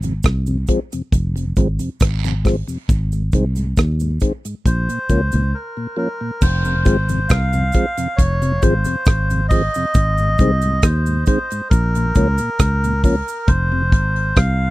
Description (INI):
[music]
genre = dub reggae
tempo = 68 BPM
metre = 4/4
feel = straight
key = F minor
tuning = A4 = 440 Hz
[part]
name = mellow tonewheel organ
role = accompaniment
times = 0.0-13.8 s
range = F2 to Db4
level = -21 LUFS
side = left 1 dB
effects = slow rotary speaker
[part]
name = fingered electric bass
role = bass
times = 0.0-14.7 s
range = F1 to Eb2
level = -18 LUFS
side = equal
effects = none
[part]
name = damped 70s drum kit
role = drums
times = 0.0-14.6 s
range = crash cymbal, hi-hat, kick drum, rim click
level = -15 LUFS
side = equal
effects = none
[part]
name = cabasa and guiro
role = percussion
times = 0.0-13.5 s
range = none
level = -36 LUFS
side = right 13 dB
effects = dub echo
[part]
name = melodica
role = melody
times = 4.7-14.7 s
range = Bb4 to F5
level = -22 LUFS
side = equal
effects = dub echo
[sound]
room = little or no reverb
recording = dry, close 1970s-style studio recording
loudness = -15 LUFS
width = side -18 dB against mid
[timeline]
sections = 0.0-6.4 A section; 6.4-14.7 B section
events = break 0.0-2.9, 5.5-6.4; part muted 13.5-14.7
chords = 0.0 Fm; 2.9 Ab; 4.7 Bbm; 6.4 Fm; 10.0 Ab; 11.7 Bbm; 13.5 Fm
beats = 0.24 1.12 2.00 | 2.89 3.77 4.65 5.54 | 6.42 7.30 8.19 9.07 | 9.95 10.84 11.72 12.60 | 13.48 14.37